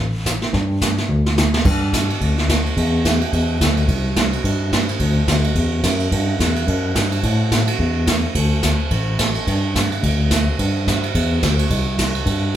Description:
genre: country, western swing.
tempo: 215 BPM.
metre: 4/4.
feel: swing 59% on 8ths.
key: unclear.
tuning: A4 = 439 Hz.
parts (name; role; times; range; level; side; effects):
overdriven tine electric piano; bass; 0.0-12.6 s; A1 to A2; -19 LUFS; left 1 dB; medium tremolo.
jazz brush drum kit; drums; 0.3-12.3 s; brushed snare drum, crash cymbal, hi-hat, kick drum, ride cymbal, snare drum; -19 LUFS; right 2 dB; none.
room: light reverb.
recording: band playing live in one room.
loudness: -16 LUFS.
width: side -11 dB against mid.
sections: 0.0-1.6 A section; 1.6-12.6 A section.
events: drum fill 1.1-1.6.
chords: none.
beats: 0.26 | 0.54 0.81 1.09 1.37 | 1.65 1.93 2.21 2.49 | 2.77 3.04 3.32 3.60 | 3.88 4.16 4.44 4.72 | 5.00 5.28 5.56 5.84 | 6.12 6.39 6.67 6.95 | 7.23 7.51 7.79 8.07 | 8.35 8.63 8.91 9.19 | 9.47 9.75 10.03 10.31 | 10.59 10.87 11.15 11.43 | 11.71 11.99 12.27 12.55.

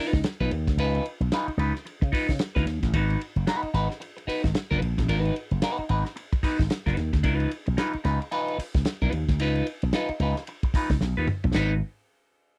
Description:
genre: funk.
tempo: 111 BPM.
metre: 4/4.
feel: swing 60% on 16ths.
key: G# dorian.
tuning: A4 = 440 Hz.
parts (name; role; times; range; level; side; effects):
clean electric guitar; accompaniment; 0.0-11.7 s; D#4 to B4; -31 LUFS; equal; phaser.
slap bass with an envelope filter; bass; 0.1-11.8 s; F#1 to C#3; -28 LUFS; equal; none.
warm soul drum kit; drums; 0.1-11.7 s; crash cymbal, hi-hat, kick drum, ride cymbal, snare drum, toms; -31 LUFS; equal; none.
room: little or no reverb.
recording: dry, close 1970s-style studio recording.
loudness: -26 LUFS.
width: mono.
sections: 0.0-11.6 A section; 11.6-12.6 B section.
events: drum fill 11.0-11.6.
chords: 0.0 C#9; 2.9 G#m7; 7.2 C#9; 11.6 G#m7.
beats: 0.24 | 0.78 1.32 1.86 2.40 | 2.93 3.47 4.01 4.55 | 5.09 5.63 6.17 6.70 | 7.24 7.78 8.32 8.86 | 9.40 9.94 10.47 11.01 | 11.55.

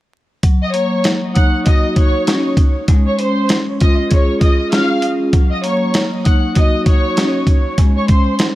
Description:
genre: hip hop, boom-bap hip-hop.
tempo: 98 BPM.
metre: 4/4.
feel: swing 61% on 16ths.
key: Eb dorian.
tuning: A4 = 439 Hz.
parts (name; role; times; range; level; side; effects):
vibraphone with medium mallets; accompaniment; 0.4-8.6 s; Gb3 to Ab4; -18 LUFS; left 1 dB; high-pass filter, low-pass filter, analog delay.
dusty soul sampler-style drum kit; drums; 0.4-8.6 s; hi-hat, kick drum, snare drum; -14 LUFS; equal; none.
rich studio violin section; melody; 0.6-8.4 s; C5 to Gb6; -20 LUFS; equal; high-pass filter, low-pass filter, analog delay.
room: light reverb, studio reverb.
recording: echo-heavy mix, vinyl crackle.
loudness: -12 LUFS.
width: side -16 dB against mid.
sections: 0.4-8.6 A section.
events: none.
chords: 0.4 Ebm7; 2.6 Db; 5.3 Ebm7; 7.5 Dbmaj7(no3).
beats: | 0.43 1.05 1.66 2.27 | 2.88 3.50 4.11 4.72 | 5.33 5.95 6.56 7.17 | 7.78 8.39.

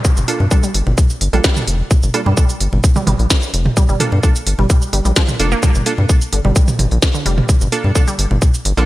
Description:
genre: minimal techno.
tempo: 129 BPM.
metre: 4/4.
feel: straight.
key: G minor.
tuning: A4 = 440 Hz.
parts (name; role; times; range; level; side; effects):
electronic kick drum; drums; 0.0-8.5 s; none; -13 LUFS; equal; none.
minimal click drum kit; drums; 0.0-8.9 s; hi-hat, shaker, snare drum; -20 LUFS; equal; gated reverb.
electronic congas and toms; percussion; 0.0-8.4 s; none; -21 LUFS; right 2 dB; gated reverb, digital delay.
downlifter; sound effects; 0.0-1.9 s; none; -35 LUFS; left 2 dB; none.
rubbery square bass; bass; 0.2-8.8 s; F1 to G2; -15 LUFS; equal; sidechain pumping.
wavetable chord stab; stabs; 0.3-8.9 s; Bb3 to A4; -23 LUFS; right 3 dB; digital delay.
resonant blip pluck; riff; 0.5-8.8 s; D3 to Bb3; -24 LUFS; right 2 dB; chorus, phaser, sidechain pumping, digital delay.
room: light reverb, digital ambience.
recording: bright 1980s-style digital production.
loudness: -12 LUFS.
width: side -17 dB against mid.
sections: 0.0-8.9 A section.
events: none.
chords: 0.0 Gm7.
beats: | 0.05 0.51 0.98 1.44 | 1.91 2.37 2.84 3.30 | 3.77 4.23 4.70 5.16 | 5.63 6.09 6.56 7.02 | 7.49 7.95 8.42.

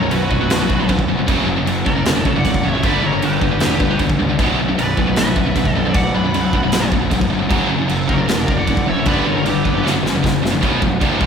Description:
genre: heavy metal.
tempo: 154 BPM.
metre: 4/4.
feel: straight.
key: B harmonic minor.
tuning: A4 = 439 Hz.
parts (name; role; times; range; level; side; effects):
high-gain lead guitar; melody; 0.0-9.9 s; B4 to B5; -26 LUFS; left 1 dB; distortion.
high-gain lead guitar; second line; 0.0-9.9 s; F#4 to F#5; -26 LUFS; right 3 dB; distortion.
pipe organ, cornet; sustained chords; 0.0-11.3 s; none; barely audible; none; none.
scooped high-gain guitar; riff; 0.0-11.3 s; B1 to G3; -20 LUFS; left 5 dB; distortion.
tight distorted guitar; riff; 0.0-11.3 s; B1 to G3; -21 LUFS; right 4 dB; distortion.
fuzz picked electric bass; bass; 0.0-11.3 s; B0 to C#2; -23 LUFS; right 1 dB; overdrive.
modern studio drum kit; drums; 0.1-11.3 s; china cymbal, crash cymbal, kick drum, snare drum; -20 LUFS; equal; none.
room: wet cathedral reverb, RT60 4.6 s.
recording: rough rehearsal-room recording, warm saturation.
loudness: -14 LUFS.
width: side -7 dB against mid.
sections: 0.0-10.6 A section.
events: drum fill 9.8-10.6.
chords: 0.0 Bm; 1.3 F#; 2.8 G; 4.4 Bm; 7.5 F#; 9.1 G; 9.8 F#; 10.6 Bm.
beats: 0.11 0.50 0.89 | 1.28 1.67 2.05 2.44 | 2.83 3.22 3.61 4.00 | 4.39 4.78 5.17 5.56 | 5.95 6.33 6.72 7.11 | 7.50 7.89 8.28 8.67 | 9.06 9.45 9.84 10.23 | 10.62 11.01.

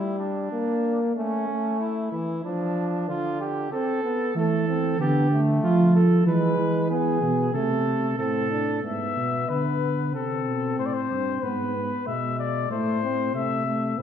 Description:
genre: classical, imitative canzona for brass ensemble.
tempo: 94 BPM.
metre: 4/4.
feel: straight.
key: unclear.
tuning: A4 = 440 Hz.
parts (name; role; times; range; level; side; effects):
warm flugelhorn; second line; 0.0-8.8, 14.0 s; C#4 to B4; -28 LUFS; right 2 dB; none.
mellow trombone; accompaniment; 0.0-14.0 s; D3 to D4; -28 LUFS; left 1 dB; none.
mellow tuba; bass; 4.4-14.0 s; G2 to F3; -24 LUFS; right 1 dB; none.
mellow cornet; melody; 8.8-14.0 s; A4 to E5; -28 LUFS; left 7 dB; none.
room: wet recital hall reverb, RT60 1.8 s.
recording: heard from further back in the room.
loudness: -22 LUFS.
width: side -8 dB against mid.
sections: 0.0-8.8 A section; 8.8-14.0 B section.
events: none.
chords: 0.0 Gm; 1.2 A; 2.4 Dm/F; 3.7 Am; 5.0 Dm; 6.3 E; 7.5 Am/C; 8.8 E/G#; 10.1 Am; 11.4 E/G#; 12.7 Am.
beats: 0.52 | 1.16 1.80 2.44 3.08 | 3.72 4.36 4.99 5.63 | 6.26 6.90 7.54 8.19 | 8.84 9.49 10.14 10.79 | 11.43 12.07 12.71 13.35 | 13.98.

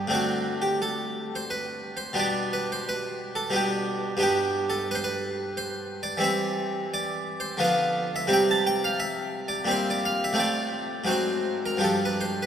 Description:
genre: classical, baroque-style suite movement for harpsichord.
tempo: 87 BPM.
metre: 3/4.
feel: rubato.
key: G major, C major from 6.2 s.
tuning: A4 = 440 Hz.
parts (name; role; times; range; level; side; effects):
harpsichord; solo; 0.0-12.5 s; G2 to A5; -24 LUFS; equal; none.
room: wet cathedral reverb, RT60 5.7 s.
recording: none.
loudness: -24 LUFS.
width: side -8 dB against mid.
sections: 0.0-12.5 A section.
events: none.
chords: 0.1 D5/A; 2.2 G/B; 4.2 G; 6.2 C/E; 7.6 Bdim/D; 8.3 C; 9.7 C7/Bb; 10.4 F/A; 11.1 Ab7; 11.8 G5.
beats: | 0.11 0.81 1.50 | 2.18 2.86 3.53 | 4.20 4.88 5.55 | 6.22 6.90 7.61 | 8.30 8.99 9.69 | 10.39 11.10 11.83.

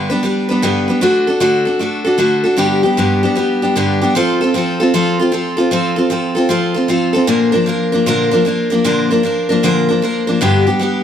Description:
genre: country.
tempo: 153 BPM.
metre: 4/4.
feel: swing 65% on 8ths.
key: unclear.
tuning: A4 = 439 Hz.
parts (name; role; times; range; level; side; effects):
picked steel-string acoustic guitar; solo; 0.0-11.0 s; G2 to B4; -12 LUFS; equal; none.
room: light reverb.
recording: none.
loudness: -12 LUFS.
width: side -9 dB against mid.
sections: 0.0-4.2 A section; 4.2-11.0 B section.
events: none.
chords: 0.0 G; 1.0 D; 2.6 G; 4.2 F; 7.3 Bb; 10.4 G.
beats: 0.24 0.63 | 1.02 1.41 1.80 2.19 | 2.59 2.98 3.37 3.76 | 4.15 4.54 4.93 5.33 | 5.72 6.11 6.50 6.89 | 7.28 7.67 8.06 8.45 | 8.84 9.23 9.62 10.02 | 10.41 10.80.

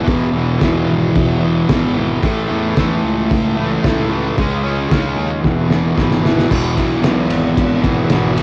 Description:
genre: garage rock duo or trio.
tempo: 112 BPM.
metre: 4/4.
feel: straight.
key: E major.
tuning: A4 = 440 Hz.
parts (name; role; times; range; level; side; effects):
fuzz guitar; riff; 0.0-8.4 s; E2 to C#4; -18 LUFS; equal; distortion, cassette tape.
fuzz picked electric bass; bass; 0.1-8.4 s; E1 to E2; -24 LUFS; equal; overdrive.
cloth-damped thuddy drum kit; drums; 0.1-8.4 s; crash cymbal, kick drum, ride cymbal, snare drum; -21 LUFS; equal; cassette tape.
room: little or no reverb.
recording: home recording on cassette.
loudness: -16 LUFS.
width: mono.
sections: 0.0-6.5 A section; 6.5-8.4 B section.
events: drum fill 5.4-6.5.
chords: 0.0 E; 2.2 A; 4.4 C#5; 5.4 E.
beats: | 0.07 0.61 1.15 1.68 | 2.22 2.76 3.29 3.83 | 4.36 4.90 5.43 5.97 | 6.50 7.03 7.57 8.10.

